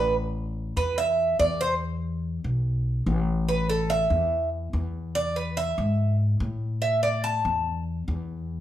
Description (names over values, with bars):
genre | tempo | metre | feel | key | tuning
latin, Cuban son and guajira | 144 BPM | 4/4 | straight | unclear | A4 = 441 Hz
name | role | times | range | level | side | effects
Cuban tres | arpeggios | 0.0-7.8 s | A4 to A5 | -24 LUFS | right 2 dB | none
upright bass | bass | 0.0-8.6 s | A1 to A2 | -26 LUFS | left 1 dB | none
room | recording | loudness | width
moderate large studio reverb, RT60 0.9 s | band playing live in one room | -24 LUFS | side -12 dB against mid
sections
0.0-8.6 A section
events
Cuban tres solo 0.0-8.6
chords
0.1 A5; 1.8 E5; 5.2 E; 6.8 A5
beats
| 0.14 0.56 0.98 1.40 | 1.81 2.23 2.65 3.07 | 3.48 3.90 4.32 4.74 | 5.16 5.57 5.99 6.41 | 6.83 7.25 7.66 8.08 | 8.50